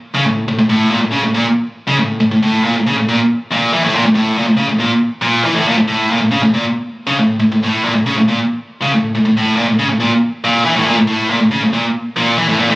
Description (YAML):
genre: metal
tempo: 138 BPM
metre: 4/4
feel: straight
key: unclear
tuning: A4 = 440 Hz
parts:
  - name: high-gain distorted guitar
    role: solo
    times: 0.1-12.8 s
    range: A2 to A3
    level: -12 LUFS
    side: equal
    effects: distortion
room: light reverb, digital ambience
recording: recorded on a phone in the room, club reverb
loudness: -12 LUFS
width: side -20 dB against mid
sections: 0.0-12.7 A section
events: none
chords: none